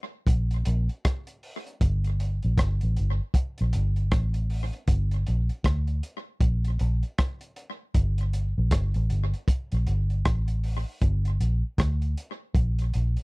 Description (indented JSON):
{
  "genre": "roots reggae",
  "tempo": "78 BPM",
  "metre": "4/4",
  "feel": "swing 60% on 16ths",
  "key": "G minor",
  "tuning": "A4 = 440 Hz",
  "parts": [
    { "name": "vintage muted fingered electric bass", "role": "bass", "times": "0.3-13.2 s", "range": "G1 to D2", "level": "-24 LUFS", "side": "equal", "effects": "none" },
    { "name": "crunchy breakbeat drum kit", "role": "drums", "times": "0.3-13.2 s", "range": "hi-hat, kick drum, rim click", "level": "-26 LUFS", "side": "equal", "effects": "tape echo" }
  ],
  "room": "little or no reverb",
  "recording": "dry, close 1970s-style studio recording",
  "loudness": "-24 LUFS",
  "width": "side -27 dB against mid",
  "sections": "0.0-13.2 A section",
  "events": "none",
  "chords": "none",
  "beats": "0.27 1.03 | 1.80 2.57 3.34 4.11 | 4.88 5.65 6.41 7.18 | 7.95 8.72 9.48 10.25 | 11.02 11.78 12.55"
}